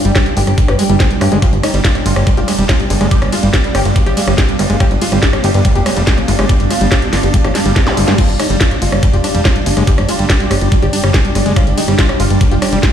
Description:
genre	psychedelic trance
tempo	142 BPM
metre	4/4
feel	straight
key	unclear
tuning	A4 = 440 Hz
part	swarming drone	sustained chords	0.0-12.9 s	G3 to D4	-22 LUFS	equal	built-in reverb, sidechain pumping
part	granular cloud pad	texture	0.0-12.9 s	D4 to G5	-22 LUFS	equal	built-in reverb, sidechain pumping
part	wide unison lead	melody	0.1-12.9 s	G3 to C5	-20 LUFS	equal	phaser, sidechain pumping, dub echo
part	overdriven acid bass	riff	0.1-12.9 s	G3 to G4	-22 LUFS	moving between left 3 dB and right 4 dB	distortion, auto-pan, sidechain pumping, dub echo
part	plucky analog bass	bass	0.1-12.8 s	F1 to G2	-15 LUFS	equal	none
part	drum and bass drum kit	drums	0.1-12.9 s	crash cymbal, hi-hat, ride cymbal, rim click, snare drum	-18 LUFS	equal	none
part	electronic kick drum	drums	0.2-12.9 s	none	-13 LUFS	equal	none
part	vowel-sweep wobble bass	second line	0.5-12.9 s	G3 to F4	-31 LUFS	right 3 dB	none
part	zap	sound effects	7.9-8.0 s	none	-23 LUFS	left 1 dB	none
room	light reverb, digital ambience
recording	played on a big sound system in a bare room, stone room reverb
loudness	-10 LUFS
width	side -9 dB against mid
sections	0.0-12.9 A section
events	drum fill 7.5-8.2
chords	0.0 G5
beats	0.16 0.58 1.00 | 1.42 1.85 2.27 2.69 | 3.11 3.54 3.96 4.38 | 4.80 5.23 5.65 6.07 | 6.49 6.92 7.34 7.76 | 8.18 8.61 9.03 9.45 | 9.87 10.30 10.72 11.14 | 11.56 11.99 12.41 12.83

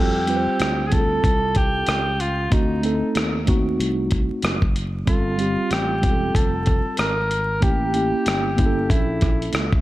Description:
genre	hip hop, jazz-hop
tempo	94 BPM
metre	4/4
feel	swing 59% on 16ths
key	F major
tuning	A4 = 440 Hz
part	breathy alto saxophone	melody	0.0-9.5 s	Eb4 to Bb4	-24 LUFS	equal	analog delay
part	mellow tine electric piano	accompaniment	0.0-9.7 s	G3 to C5	-24 LUFS	right 1 dB	medium stereo tremolo
part	sustaining fretless electric bass	bass	0.0-9.8 s	E1 to F2	-26 LUFS	equal	none
part	dusty soul sampler-style drum kit	drums	0.3-9.8 s	hi-hat, kick drum, rim click	-21 LUFS	equal	vintage 12-bit sampler grit
room	light reverb, digital ambience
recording	dark, warm production, vinyl crackle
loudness	-18 LUFS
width	side -16 dB against mid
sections	0.0-9.8 A section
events	none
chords	0.0 Fadd9; 2.5 D7b9; 5.1 Gm11; 7.6 A7b9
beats	0.60 1.24 1.88 | 2.52 3.16 3.79 4.43 | 5.07 5.71 6.35 6.99 | 7.62 8.26 8.90 9.54

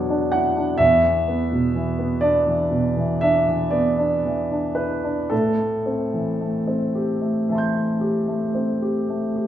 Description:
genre	classical, impressionist solo piano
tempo	36-43 BPM (dotted quarters)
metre	9/8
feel	rubato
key	A dorian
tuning	A4 = 440 Hz
part	warm concert grand piano	solo	0.0-9.5 s	E2 to G#6	-19 LUFS	equal	none
room	wet recital hall reverb, RT60 1.3 s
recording	heard from further back in the room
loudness	-19 LUFS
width	side -11 dB against mid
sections	0.0-9.5 A section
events	none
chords	0.0 E9; 0.8 E5; 5.3 Am7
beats	| 0.81 2.24 3.73 | 5.31 6.94 8.54

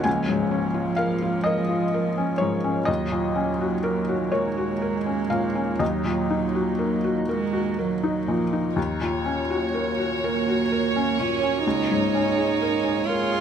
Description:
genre	neoclassical piano and strings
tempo	41 BPM (dotted quarters)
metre	6/8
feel	rubato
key	Eb minor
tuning	A4 = 439 Hz
part	warm cello	second line	0.0-13.4 s	F3 to F4	-26 LUFS	right 8 dB	none
part	felt-muted upright piano	accompaniment	0.0-13.4 s	Db2 to Ab5	-24 LUFS	left 3 dB	none
part	warbly tape-like pad	sustained chords	0.0-13.4 s	Bb3 to Eb5	-32 LUFS	right 1 dB	chorus, built-in reverb
part	warm chamber violin section	melody	8.8-13.4 s	Db5	-27 LUFS	right 1 dB	none
room	little or no reverb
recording	close, detailed microphones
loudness	-21 LUFS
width	side -8 dB against mid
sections	0.0-8.8 A section; 8.8-13.4 A section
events	none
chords	0.1 Bbm7/Db; 2.9 Ebm7; 5.8 Ebm; 8.8 Ebm7; 11.6 Bbm7/Db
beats	| 0.06 1.46 | 2.88 4.33 | 5.81 7.30 | 8.77 10.22 | 11.65 13.07

